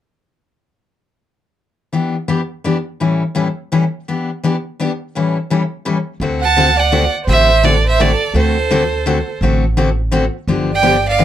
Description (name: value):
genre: acoustic string swing (jazz manouche)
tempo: 168 BPM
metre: 3/4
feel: swing 63% on 8ths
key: D mixolydian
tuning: A4 = 440 Hz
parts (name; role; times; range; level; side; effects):
- picked steel-string acoustic guitar; accompaniment; 1.9-11.2 s; A2 to A4; -16 LUFS; left 3 dB; none
- upright bass; bass; 6.2-11.2 s; G1 to D2; -17 LUFS; right 1 dB; none
- bright violin; melody; 6.4-11.2 s; C5 to A5; -15 LUFS; right 3 dB; none
- warm violin; second line; 6.4-11.2 s; A4 to F#5; -20 LUFS; right 6 dB; none
room: moderate club ambience, RT60 0.5 s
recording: none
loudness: -14 LUFS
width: side -11 dB against mid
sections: 1.9-6.2 A section; 6.2-11.2 B section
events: none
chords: 1.9 Em7; 3.0 A7; 4.1 Em7; 5.1 A7; 6.2 D7; 10.5 G7